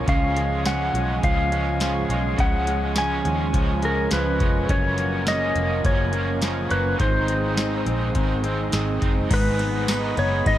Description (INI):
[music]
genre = dream pop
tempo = 104 BPM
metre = 4/4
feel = straight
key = Db major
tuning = A4 = 440 Hz
[part]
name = clean lap steel guitar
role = melody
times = 0.0-10.6 s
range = Bb4 to Ab5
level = -26 LUFS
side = left 1 dB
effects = tape echo
[part]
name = crunchy overdriven guitar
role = accompaniment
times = 0.0-10.6 s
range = Gb2 to Eb4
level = -29 LUFS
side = right 4 dB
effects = harmonic tremolo, ensemble chorus
[part]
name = pipe organ, flutes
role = sustained chords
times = 0.0-10.6 s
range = F3 to Cb6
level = -30 LUFS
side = right 4 dB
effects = none
[part]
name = direct-recorded clean electric guitar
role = arpeggios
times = 0.0-10.6 s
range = Gb2 to Eb4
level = -29 LUFS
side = left 4 dB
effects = lush chorus, tape echo
[part]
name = vintage muted fingered electric bass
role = bass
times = 0.0-10.6 s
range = F1 to Eb2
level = -26 LUFS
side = equal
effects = none
[part]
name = booming analog drum machine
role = drums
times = 0.1-10.6 s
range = crash cymbal, hi-hat, kick drum, ride cymbal, snare drum, tambourine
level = -24 LUFS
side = equal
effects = none
[sound]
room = light reverb, digital ambience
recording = none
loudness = -20 LUFS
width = side -12 dB against mid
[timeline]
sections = 0.0-9.3 A section; 9.3-10.6 B section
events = none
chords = 0.1 Db; 4.7 Gbmaj7; 7.0 Ab; 9.3 Abm